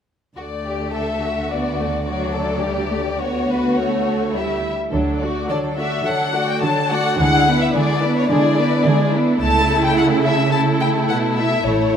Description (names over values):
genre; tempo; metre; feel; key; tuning
quick classical-period movement for symphony orchestra; 106 BPM; 4/4; straight; D major; A4 = 440 Hz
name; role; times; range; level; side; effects
rich chamber violin section; melody; 0.4-12.0 s; B4 to A5; -21 LUFS; left 3 dB; none
rich chamber violin section; second line; 0.4-12.0 s; D4 to D5; -24 LUFS; left 2 dB; none
warm chamber viola section; accompaniment; 0.4-12.0 s; F#3 to F#4; -22 LUFS; right 2 dB; none
warm chamber cello section; bass; 0.4-12.0 s; D2 to D3; -23 LUFS; right 2 dB; none
warm chamber double bass section; bass; 4.9-12.0 s; A1 to D2; -25 LUFS; right 2 dB; none
room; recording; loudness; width
wet scoring stage reverb, RT60 2.1 s; none; -16 LUFS; side -8 dB against mid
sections
0.4-4.9 A section; 4.9-12.0 B section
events
none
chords
0.4 D; 2.6 A7/D; 4.9 D; 7.2 E7/D; 9.4 A/C#